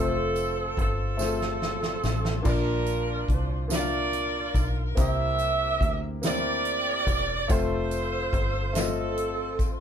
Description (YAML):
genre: slow gospel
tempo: 48 BPM (dotted quarters)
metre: 6/8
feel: straight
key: unclear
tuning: A4 = 441 Hz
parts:
  - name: warm saxophone section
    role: melody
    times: 0.0-9.8 s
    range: C4 to E5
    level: -28 LUFS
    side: right 2 dB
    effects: none
  - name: warm grand piano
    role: accompaniment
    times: 0.0-9.8 s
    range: Bb2 to F5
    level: -31 LUFS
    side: left 3 dB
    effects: none
  - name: fingered electric bass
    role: bass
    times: 0.0-9.8 s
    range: E1 to D2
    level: -30 LUFS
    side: equal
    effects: none
  - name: natural country drum kit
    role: drums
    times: 0.4-9.8 s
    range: crash cymbal, hi-hat, kick drum, snare drum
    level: -28 LUFS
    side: equal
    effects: none
  - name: tambourine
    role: percussion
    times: 0.4-9.8 s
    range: none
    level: -41 LUFS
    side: right 6 dB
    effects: none
room: moderate small room reverb, RT60 0.5 s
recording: band playing live in one room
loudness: -24 LUFS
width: side -8 dB against mid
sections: 0.0-9.8 A section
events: drum fill 1.2-2.5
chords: 0.0 F; 2.5 Bb; 5.0 C7; 7.5 F